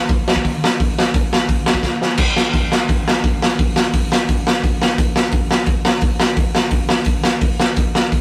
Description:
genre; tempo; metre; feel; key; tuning
punk; 172 BPM; 4/4; straight; none; none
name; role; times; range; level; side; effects
raw garage drum kit; drums; 0.1-8.2 s; crash cymbal, hi-hat, kick drum, snare drum; -17 LUFS; equal; none
room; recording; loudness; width
light reverb; rough rehearsal-room recording; -17 LUFS; mono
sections
0.0-2.2 A section; 2.2-8.2 B section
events
drum fill 1.8-2.2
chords
none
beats
0.08 0.43 | 0.78 1.13 1.48 1.83 | 2.18 2.53 2.88 3.23 | 3.58 3.93 4.28 4.63 | 4.98 5.33 5.67 6.02 | 6.37 6.72 7.07 7.42 | 7.76 8.11

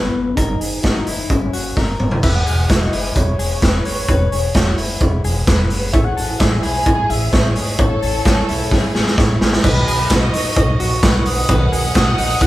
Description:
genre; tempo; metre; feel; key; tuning
jangly indie pop; 130 BPM; 4/4; straight; unclear; A4 = 440 Hz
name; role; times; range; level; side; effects
warm velvety synth lead; melody; 0.0-12.5 s; B3 to F#6; -23 LUFS; left 1 dB; chorus
direct-recorded clean electric guitar; arpeggios; 0.0-12.5 s; D#4 to C#5; -27 LUFS; left 4 dB; none
upright bass; bass; 0.0-12.5 s; E1 to B1; -21 LUFS; equal; none
raw garage drum kit; drums; 0.4-12.5 s; crash cymbal, hi-hat, kick drum, ride cymbal, snare drum, toms; -16 LUFS; equal; none
fingerpicked steel-string acoustic guitar; accompaniment; 2.2-12.5 s; B2 to C#5; -28 LUFS; right 3 dB; none
warm studio violin section; second line; 5.9-12.5 s; E4 to F#5; -26 LUFS; equal; none
room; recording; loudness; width
moderate large studio reverb, RT60 1.1 s; band playing live in one room; -14 LUFS; side -16 dB against mid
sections
0.0-2.2 A section; 2.2-9.6 B section; 9.6-12.5 C section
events
drum fill 1.8-2.2, 8.7-9.6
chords
0.4 D#m/F#; 1.3 F#7; 2.2 E6; 5.9 Amaj7; 9.6 Bmaj7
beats
| 0.37 0.84 1.30 1.77 | 2.23 2.70 3.16 3.62 | 4.09 4.55 5.01 5.48 | 5.94 6.40 6.86 7.33 | 7.79 8.25 8.71 9.18 | 9.64 10.10 10.56 11.03 | 11.49 11.95 12.41

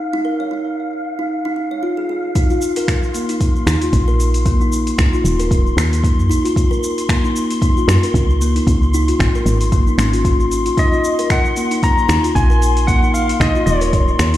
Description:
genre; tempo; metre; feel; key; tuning
organic downtempo; 114 BPM; 4/4; swing 56% on 16ths; Eb dorian; A4 = 443 Hz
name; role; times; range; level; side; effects
wind-like tuned noise texture; texture; 0.0-14.4 s; F5 to C6; -26 LUFS; left 4 dB; built-in reverb
kalimba; arpeggios; 0.1-14.4 s; Bb3 to Db5; -20 LUFS; equal; ping-pong delay
afro-pop drum kit; drums; 2.4-14.4 s; cabasa, finger snaps, hi-hat; -25 LUFS; equal; studio reverb
electronic kick drum; drums; 2.4-14.0 s; none; -16 LUFS; equal; studio reverb
woody FM bass; bass; 3.7-14.4 s; Eb1 to Gb2; -16 LUFS; equal; none
clean lap steel guitar; melody; 10.8-14.4 s; Db5 to Bb5; -19 LUFS; left 1 dB; ping-pong delay
room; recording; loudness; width
light reverb, digital ambience; played on a big sound system in a bare room, stone room reverb; -14 LUFS; side -14 dB against mid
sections
0.0-2.4 A section; 2.4-14.4 B section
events
filter sweep on kalimba 0.0-2.4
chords
0.0 Ebsus2; 1.3 Ebsus4; 2.4 Eb5; 6.6 Gb (rootless); 8.7 Dbmaj7; 10.8 Ebm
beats
| 0.24 0.77 1.30 1.82 | 2.35 2.88 3.40 3.93 | 4.46 4.98 5.51 6.04 | 6.56 7.09 7.61 8.14 | 8.67 9.19 9.72 10.24 | 10.77 11.30 11.82 12.35 | 12.88 13.40 13.93

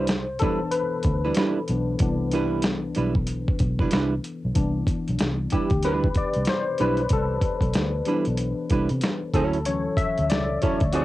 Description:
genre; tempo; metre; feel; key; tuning
R&B, neo-soul; 94 BPM; 4/4; swing 62% on 16ths; C major; A4 = 442 Hz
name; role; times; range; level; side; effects
archtop guitar, miked and amplified; second line; 0.0-11.0 s; F#3 to B4; -25 LUFS; right 4 dB; cassette tape
tine electric piano; accompaniment; 0.0-11.0 s; E3 to E5; -27 LUFS; left 3 dB; overdrive, ensemble chorus, cassette tape
vintage muted fingered electric bass; bass; 0.0-11.0 s; B1 to C3; -27 LUFS; equal; transformer saturation
dusty soul sampler-style drum kit; drums; 0.1-11.0 s; hi-hat, kick drum, snare drum; -25 LUFS; equal; overdrive, cassette tape
warm saxophone section; stabs; 10.9-11.0 s; A3 to F#4; -27 LUFS; left 2 dB; cassette tape
room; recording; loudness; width
little or no reverb; home recording on cassette; -21 LUFS; side -16 dB against mid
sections
0.0-4.5 A section; 4.5-11.0 B section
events
tine electric piano solo 0.0-4.5, 4.5-11.0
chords
0.0 Cmaj9; 9.3 Dmaj9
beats
0.08 0.72 1.36 | 2.00 2.63 3.27 3.91 | 4.55 5.19 5.83 6.46 | 7.10 7.74 8.38 9.02 | 9.66 10.29 10.93

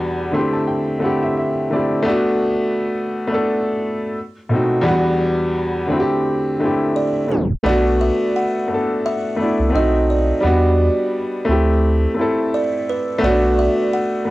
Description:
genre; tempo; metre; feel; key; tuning
hip hop; 86 BPM; 4/4; swing 57% on 16ths; unclear; A4 = 440 Hz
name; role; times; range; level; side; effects
clear upright piano; accompaniment; 0.0-14.3 s; E2 to C6; -17 LUFS; equal; cassette tape
buzzing kalimba; melody; 7.0-14.3 s; B4 to F#5; -23 LUFS; right 3 dB; cassette tape
round analog bass; bass; 7.6-13.7 s; B1 to E2; -18 LUFS; equal; none
room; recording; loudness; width
light reverb; home recording on cassette, tape stop; -16 LUFS; side -18 dB against mid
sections
0.0-7.6 A section; 7.6-14.3 B section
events
upright piano fill 0.0-2.1; tape stop 7.3-7.6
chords
0.3 D7sus4; 2.1 Bm7; 4.2 B7b9; 4.9 Em7; 5.9 D7sus4; 7.6 Bm7; 9.7 B7b9; 10.4 Em7; 11.5 D7sus4; 13.2 Bm7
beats
0.67 1.36 | 2.06 2.76 3.46 4.16 | 4.85 5.55 6.25 6.95 | 7.64 8.34 9.04 9.74 | 10.44 11.13 11.83 12.53 | 13.23 13.92

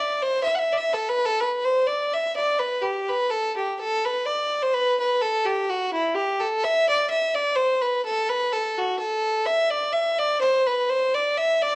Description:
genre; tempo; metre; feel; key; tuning
celtic folk; 126 BPM; 3/4; straight; unclear; A4 = 440 Hz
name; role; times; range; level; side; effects
clear fiddle; solo; 0.0-11.8 s; E4 to F#5; -21 LUFS; equal; cassette tape
room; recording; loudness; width
wet studio reverb, RT60 0.5 s; home recording on cassette; -21 LUFS; side -24 dB against mid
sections
0.0-3.8 A section; 3.8-11.8 B section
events
none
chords
none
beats
0.43 | 0.91 1.38 1.86 | 2.33 2.81 3.29 | 3.76 4.24 4.71 | 5.18 5.66 6.14 | 6.61 7.09 7.56 | 8.04 8.52 8.99 | 9.47 9.94 10.42 | 10.90 11.37

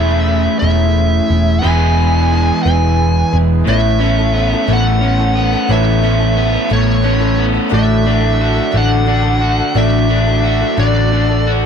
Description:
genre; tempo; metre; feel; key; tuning
folk rock and heartland rock; 59 BPM (dotted quarters); 6/8; straight; A major; A4 = 439 Hz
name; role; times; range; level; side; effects
smooth overdriven lead guitar; melody; 0.0-11.5 s; C#5 to G#5; -19 LUFS; equal; none
bright concert grand piano; accompaniment; 0.0-11.7 s; F#4 to E5; -32 LUFS; right 7 dB; none
picked old ladder-braced acoustic guitar; accompaniment; 0.0-11.7 s; A2 to C#5; -22 LUFS; left 4 dB; none
hand-pumped harmonium; sustained chords; 0.0-11.7 s; G#3 to A4; -27 LUFS; right 2 dB; none
crunchy overdriven guitar; riff; 0.0-11.7 s; E2 to F#4; -16 LUFS; equal; none
hollow-body short-scale picked electric bass; bass; 0.0-11.6 s; E1 to A1; -15 LUFS; equal; none
room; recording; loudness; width
light reverb; dark, warm production; -11 LUFS; side -7 dB against mid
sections
0.0-3.7 A section; 3.7-11.7 B section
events
none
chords
0.0 Amaj7/E; 1.6 E; 3.7 Aadd9; 7.7 D/A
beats
0.62 | 1.64 2.65 | 3.67 4.68 | 5.70 6.71 | 7.73 8.74 | 9.76 10.78

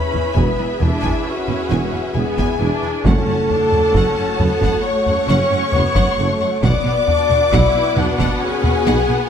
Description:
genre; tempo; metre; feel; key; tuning
cinematic, epic orchestral film score; 67 BPM; 4/4; straight; F# minor; A4 = 439 Hz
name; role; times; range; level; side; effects
warm symphonic violin section; second line; 0.0-9.3 s; E5 to D6; -26 LUFS; left 2 dB; none
rich studio viola section; accompaniment; 0.0-9.3 s; A3 to E4; -26 LUFS; right 2 dB; none
dark French horn section; sustained chords; 0.0-9.3 s; E4 to D5; -19 LUFS; left 3 dB; none
warm symphonic string section; sustained chords; 0.0-9.3 s; A3 to F#5; -26 LUFS; left 1 dB; none
bright symphonic violin section; melody; 0.1-9.2 s; F#5 to G#5; -31 LUFS; left 3 dB; none
rich symphonic cello section; bass; 0.1-9.2 s; E2 to B2; -24 LUFS; right 2 dB; none
taiko ensemble; drums; 0.1-9.1 s; none; -21 LUFS; equal; none
clear symphonic double bass section; bass; 0.4-9.0 s; E1 to B1; -23 LUFS; right 2 dB; none
dark tuba; bass; 0.4-9.0 s; E1 to B1; -24 LUFS; right 3 dB; none
timpani; percussion; 3.1-4.4 s; F#2; -25 LUFS; left 2 dB; none
room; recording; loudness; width
moderate scoring stage reverb, RT60 1.5 s; none; -14 LUFS; side -8 dB against mid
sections
0.0-9.3 A section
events
none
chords
0.0 E; 3.0 F#m; 6.6 Bm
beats
0.36 1.26 2.15 | 3.05 3.94 4.84 5.74 | 6.63 7.53 8.42

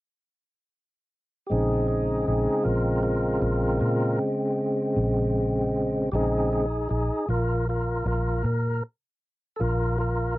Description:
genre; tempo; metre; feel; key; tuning
slow blues; 52 BPM (dotted quarters); 12/8; straight; Bb minor; A4 = 440 Hz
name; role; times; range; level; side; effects
tonewheel organ; sustained chords; 1.5-10.4 s; Db3 to Bb4; -25 LUFS; equal; slow rotary speaker, cassette tape
vintage muted fingered electric bass; bass; 1.5-10.4 s; Bb1 to Bb2; -26 LUFS; equal; none
room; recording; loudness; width
light reverb; home recording on cassette; -23 LUFS; side -18 dB against mid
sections
1.5-10.4 A section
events
tonewheel organ solo 1.5-10.4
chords
1.5 Bbm9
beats
| 1.51 2.67 3.83 4.98 | 6.14 7.30 8.46 9.61

